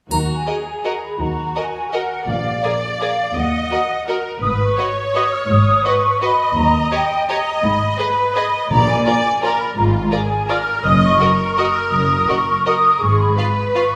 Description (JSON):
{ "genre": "classical, orchestral ballroom waltz", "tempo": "167 BPM", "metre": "3/4", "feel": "uneven beats, rubato", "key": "Eb minor", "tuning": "A4 = 441 Hz", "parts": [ { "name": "mellow hollow flute section", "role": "second line", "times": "0.1-14.0 s", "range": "D5 to F6", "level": "-21 LUFS", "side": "equal", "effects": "none" }, { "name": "rich symphonic viola section", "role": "accompaniment", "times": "0.1-14.0 s", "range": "F4 to Eb5", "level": "-24 LUFS", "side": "equal", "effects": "none" }, { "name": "warm symphonic cello section", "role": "bass", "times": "0.1-13.3 s", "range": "Eb2 to Eb3", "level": "-25 LUFS", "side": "equal", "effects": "none" }, { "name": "warm symphonic double bass section", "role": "bass", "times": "0.1-13.3 s", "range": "Gb1 to Eb2", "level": "-26 LUFS", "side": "equal", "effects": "none" }, { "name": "triangle", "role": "percussion", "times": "0.1-0.8 s", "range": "none", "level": "-36 LUFS", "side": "equal", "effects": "none" }, { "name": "warm symphonic violin section", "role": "melody", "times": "0.5-13.8 s", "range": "D5 to F5", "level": "-32 LUFS", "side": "equal", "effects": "none" }, { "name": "warm symphonic violin section", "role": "second line", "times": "0.5-13.8 s", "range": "F4 to Db5", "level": "-29 LUFS", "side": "equal", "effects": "none" }, { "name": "timpani", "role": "percussion", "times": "2.3-2.8, 8.7-9.2 s", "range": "Bb2", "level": "-29 LUFS", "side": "equal", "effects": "none" } ], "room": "wet scoring stage reverb, RT60 1.8 s", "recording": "none", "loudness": "-18 LUFS", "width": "mono", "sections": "0.1-14.0 A section", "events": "none", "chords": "0.1 Ebm; 2.3 Bb; 3.4 Ebm; 4.4 Abm; 6.6 Eb; 7.6 Abm; 8.7 Bb; 9.8 Bb7(no3)/Ab; 10.8 Ebm/Gb; 13.0 Fdim/Ab", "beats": "| 0.11 0.47 0.85 | 1.20 1.56 1.93 | 2.28 2.63 3.00 | 3.35 3.71 4.08 | 4.42 4.78 5.15 | 5.50 5.85 6.22 | 6.56 6.92 7.28 | 7.63 7.98 8.36 | 8.70 9.06 9.42 | 9.77 10.12 10.49 | 10.85 11.20 11.57 | 11.92 12.28 12.66 | 13.01 13.38 13.75" }